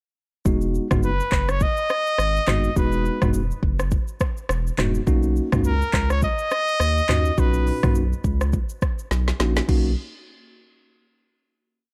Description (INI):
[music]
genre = afrobeats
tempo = 104 BPM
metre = 4/4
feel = swing 58% on 16ths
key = B major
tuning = A4 = 439 Hz
[part]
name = bell-like tine electric piano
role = accompaniment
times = 0.5-9.9 s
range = A#2 to F#4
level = -28 LUFS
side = equal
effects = none
[part]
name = saturated sub bass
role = bass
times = 0.5-10.0 s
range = D#1 to D#2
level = -25 LUFS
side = equal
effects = none
[part]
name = deep house drum kit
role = drums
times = 0.5-9.8 s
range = crash cymbal, handclaps, hi-hat, kick drum, rim click, shaker, snare drum, toms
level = -26 LUFS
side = equal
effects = none
[part]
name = clear trumpet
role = melody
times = 1.0-8.0 s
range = A#4 to D#5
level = -26 LUFS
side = equal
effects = analog delay
[sound]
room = digital ambience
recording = dry, gritty hardware recording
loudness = -22 LUFS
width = mono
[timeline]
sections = 0.5-9.7 chorus; 9.7-11.9 final chord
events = drum fill 9.1-9.7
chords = 0.5 Emaj9; 5.1 Bmaj7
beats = | 0.46 1.03 1.61 2.19 | 2.76 3.34 3.92 4.49 | 5.07 5.65 6.22 6.80 | 7.38 7.96 8.53 9.11 | 9.69